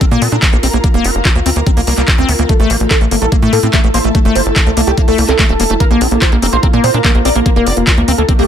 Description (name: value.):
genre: psychedelic trance.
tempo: 145 BPM.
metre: 4/4.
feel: straight.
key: unclear.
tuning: A4 = 443 Hz.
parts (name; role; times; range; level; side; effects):
liquid acid bass; riff; 0.0-8.4 s; A3 to F4; -17 LUFS; moving between left 4 dB and right 3 dB; chorus, auto-pan, sidechain pumping, digital delay.
drum and bass drum kit; drums; 0.0-8.5 s; handclaps, hi-hat; -17 LUFS; equal; overdrive.
electronic kick drum; drums; 0.0-8.4 s; none; -12 LUFS; equal; overdrive.
ethereal airy pad; texture; 0.0-8.5 s; E4 to Bb5; -21 LUFS; equal; ensemble chorus, built-in reverb, sidechain pumping.
tight sequencer bass; bass; 0.1-8.5 s; E1 to Bb2; -15 LUFS; equal; none.
wide unison lead; melody; 2.5-8.5 s; A3 to D5; -16 LUFS; equal; phaser, vintage 12-bit sampler grit, sidechain pumping, tape echo.
swell; sound effects; 8.4-8.5 s; none; -16 LUFS; right 5 dB; none.
room: little or no reverb.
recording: none.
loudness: -9 LUFS.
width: side -9 dB against mid.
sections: 0.0-8.5 A section.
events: swell 8.4.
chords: 0.0 Bb5; 2.5 A5; 5.8 Bb5.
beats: 0.01 0.42 | 0.84 1.25 1.67 2.08 | 2.49 2.91 3.32 3.73 | 4.15 4.56 4.98 5.39 | 5.80 6.22 6.63 7.04 | 7.46 7.87 8.29.